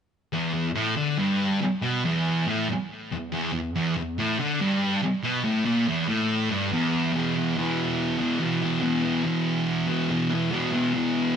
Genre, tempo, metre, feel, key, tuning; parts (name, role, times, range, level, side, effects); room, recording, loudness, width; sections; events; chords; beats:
rock; 141 BPM; 4/4; straight; A4 = 440 Hz
thick fuzz guitar; solo; 0.3-11.4 s; E2 to E3; -23 LUFS; equal; distortion, digital delay
light reverb; band playing live in one room, nothing above 10.5 kHz; -23 LUFS; side -7 dB against mid
0.3-7.1 A section; 7.1-11.4 B section
0.3 E5
| 0.32 0.75 1.18 1.61 | 2.03 2.46 2.89 3.31 | 3.74 4.16 4.59 5.01 | 5.44 5.86 6.29 6.71 | 7.13 7.56 7.98 8.40 | 8.83 9.25 9.68 10.10 | 10.53 10.95